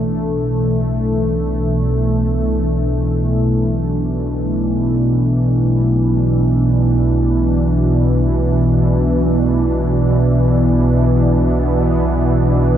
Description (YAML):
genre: dark ambient drone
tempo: free time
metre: none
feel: none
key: B minor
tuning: A4 = 440 Hz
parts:
  - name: sweeping resonant pad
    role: sustained chords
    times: 0.0-12.8 s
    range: B2 to D4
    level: -16 LUFS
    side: right 1 dB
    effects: chorus
  - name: analog drone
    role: drone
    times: 0.0-12.8 s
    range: B1 to B2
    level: -17 LUFS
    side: equal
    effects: chorus
  - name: bronze singing bowl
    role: texture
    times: 0.0-12.8 s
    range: none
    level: barely audible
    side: none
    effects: none
room: moderate huge ambient reverb, RT60 8.6 s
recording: none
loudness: -14 LUFS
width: side -10 dB against mid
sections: 0.0-12.8 A section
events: filter sweep on synth drone 0.0-12.8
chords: 0.0 Bm